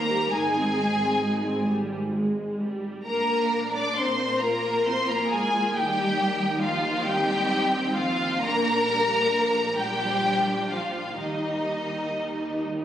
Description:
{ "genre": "cinematic, emotional film score for orchestra", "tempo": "44 BPM (dotted quarters)", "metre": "6/8", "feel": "uneven beats, rubato", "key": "Eb major", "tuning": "A4 = 439 Hz", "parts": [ { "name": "rich symphonic violin section", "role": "melody", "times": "0.0-12.6 s", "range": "Eb5 to D6", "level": "-27 LUFS", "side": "left 1 dB", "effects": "none" }, { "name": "rich symphonic violin section", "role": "second line", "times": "0.0-12.6 s", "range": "Eb4 to D5", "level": "-27 LUFS", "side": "left 2 dB", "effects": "none" }, { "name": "warm symphonic viola section", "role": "accompaniment", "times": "0.0-12.8 s", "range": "F3 to Ab4", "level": "-30 LUFS", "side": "right 1 dB", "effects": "none" }, { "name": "rich symphonic double bass section", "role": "bass", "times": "0.0-12.8 s", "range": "Ab1 to Eb2", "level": "-34 LUFS", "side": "right 2 dB", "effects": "none" }, { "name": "warm symphonic cello section", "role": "bass", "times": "0.0-12.6 s", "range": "Eb3 to D4", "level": "-32 LUFS", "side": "right 1 dB", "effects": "none" } ], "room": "moderate concert hall reverb, RT60 2.4 s", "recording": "recorded on a phone in the room, studio reverb", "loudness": "-22 LUFS", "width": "side -10 dB against mid", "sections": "0.0-12.8 A section", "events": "none", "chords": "0.3 Ab; 3.1 Bb; 5.8 Eb; 8.4 Bb; 11.2 Eb" }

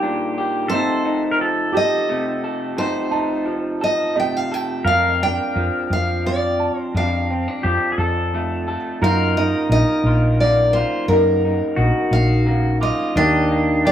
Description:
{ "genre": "acoustic folk-pop ballad", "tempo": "58 BPM (dotted quarters)", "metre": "6/8", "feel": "straight", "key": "Bb major", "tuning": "A4 = 439 Hz", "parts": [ { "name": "pedal steel guitar", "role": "second line", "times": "0.0-13.9 s", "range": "D4 to Bb4", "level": "-24 LUFS", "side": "left 2 dB", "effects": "none" }, { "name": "electric guitar through a small old amp", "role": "accompaniment", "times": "0.0-13.9 s", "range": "F2 to A4", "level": "-22 LUFS", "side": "equal", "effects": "none" }, { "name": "felt-muted upright piano", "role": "arpeggios", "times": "0.0-13.9 s", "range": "G3 to D6", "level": "-27 LUFS", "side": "right 5 dB", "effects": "none" }, { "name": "picked steel-string acoustic guitar", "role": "melody", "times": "0.7-13.9 s", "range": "Bb4 to G5", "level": "-22 LUFS", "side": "equal", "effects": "none" }, { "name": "woody fretless electric bass", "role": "bass", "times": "4.8-13.9 s", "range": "Bb1 to Gb2", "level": "-20 LUFS", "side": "equal", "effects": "none" } ], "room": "moderate studio ambience, RT60 0.5 s", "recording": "band playing live in one room", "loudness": "-17 LUFS", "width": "side -10 dB against mid", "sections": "0.0-13.2 A section", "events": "none", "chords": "0.0 Ebmaj7; 0.7 F7; 4.9 Bbmaj7/F; 9.0 Ebmadd9; 13.2 Ebmaj7" }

